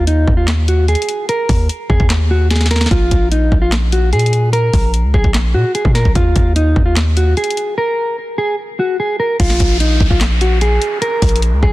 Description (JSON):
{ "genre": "hip hop, trap", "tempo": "148 BPM", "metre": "4/4", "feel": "half-time", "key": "unclear", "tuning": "A4 = 440 Hz", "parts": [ { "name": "mellow electric guitar", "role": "melody", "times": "0.0-11.7 s", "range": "Eb4 to Bb4", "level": "-17 LUFS", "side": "equal", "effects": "digital delay" }, { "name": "hard-hitting 808-style bass", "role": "bass", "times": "0.0-11.7 s", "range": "Bb1 to Bb2", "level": "-14 LUFS", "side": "equal", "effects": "none" }, { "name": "trap drum kit", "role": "drums", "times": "0.1-11.7 s", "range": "crash cymbal, handclaps, hi-hat, kick drum, snare drum", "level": "-16 LUFS", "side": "equal", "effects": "vintage 12-bit sampler grit" }, { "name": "downlifter", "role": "sound effects", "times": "9.4-11.7 s", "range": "none", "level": "-23 LUFS", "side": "equal", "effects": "none" } ], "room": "little or no reverb", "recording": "dense, heavily limited modern master", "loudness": "-12 LUFS", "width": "side -17 dB against mid", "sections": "0.0-9.4 A section; 9.4-11.7 B section", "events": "drum fill 2.5-2.9; break 7.8-9.4", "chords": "0.0 Eb5; 2.9 N.C.; 6.2 Eb5; 9.4 N.C." }